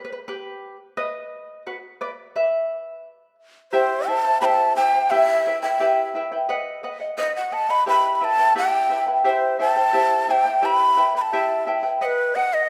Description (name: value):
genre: andean folk, Andean ensemble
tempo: 87 BPM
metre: 2/4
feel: straight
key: E harmonic minor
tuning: A4 = 440 Hz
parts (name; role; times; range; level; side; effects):
- charango; accompaniment; 0.0-12.7 s; E4 to G5; -26 LUFS; equal; none
- breathy large quena; melody; 3.7-12.7 s; B4 to B5; -22 LUFS; equal; none
room: moderate scoring stage reverb, RT60 2.0 s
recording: none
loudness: -21 LUFS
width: mono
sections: 0.0-3.7 A section; 3.7-12.7 B section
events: charango solo 0.0-3.7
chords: 0.0 N.C.; 1.0 B; 2.4 N.C.; 3.7 C; 5.1 Em; 6.5 B; 7.9 Em; 9.2 C; 10.6 Em; 12.0 B